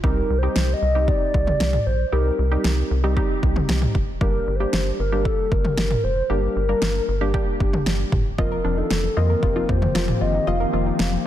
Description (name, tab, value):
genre	synth-pop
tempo	115 BPM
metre	4/4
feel	straight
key	unclear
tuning	A4 = 440 Hz
part	hollow clarinet-like synth lead	melody	0.0-11.3 s	A4 to F5	-25 LUFS	left 1 dB	chorus
part	funky polysynth comp	accompaniment	0.0-11.1 s	F3 to Bb4	-27 LUFS	equal	chorus
part	rubbery square bass	bass	0.0-11.2 s	F1 to F2	-23 LUFS	equal	none
part	deep house drum kit	drums	0.0-11.1 s	kick drum, snare drum, toms	-23 LUFS	equal	overdrive
part	warm analog pad	sustained chords	8.8-11.3 s	Eb3 to G4	-28 LUFS	left 1 dB	chorus
part	soft round pluck	arpeggios	8.4-11.2 s	F3 to Eb5	-30 LUFS	left 3 dB	chorus, digital delay
room	light reverb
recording	dense, heavily limited modern master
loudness	-19 LUFS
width	side -12 dB against mid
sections	0.0-8.4 A section; 8.4-11.3 B section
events	none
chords	0.0 Cm; 4.2 Gm; 8.4 F7sus4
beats	| 0.04 0.56 1.08 1.60 | 2.12 2.65 3.17 3.69 | 4.21 4.73 5.25 5.78 | 6.30 6.82 7.34 7.86 | 8.38 8.91 9.43 9.95 | 10.47 10.99